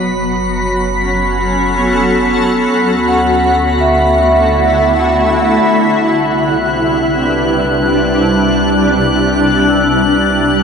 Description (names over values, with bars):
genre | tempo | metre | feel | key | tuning
ambient | 62 BPM | 3/4 | straight | C lydian | A4 = 438 Hz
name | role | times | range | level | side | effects
shimmering ambient pad | sustained chords | 0.0-10.6 s | C3 to A4 | -13 LUFS | equal | chorus, built-in reverb
vibraphone with soft mallets | arpeggios | 0.0-10.6 s | B3 to E6 | -16 LUFS | equal | ping-pong delay
warm sub bass | bass | 0.0-10.6 s | F#1 to D2 | -22 LUFS | equal | none
drifting glass-harmonics texture | texture | 0.0-10.6 s | B5 to F#6 | -18 LUFS | left 1 dB | chorus, built-in reverb
room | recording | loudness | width
wet huge ambient reverb, RT60 8.5 s | none | -10 LUFS | side -6 dB against mid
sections
0.0-5.6 A section; 5.6-10.6 B section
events
fade-in on vibraphone 5.6-10.6; fade-in on sub bass 5.6-10.6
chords
0.0 F#m; 2.7 D; 5.6 Cmaj7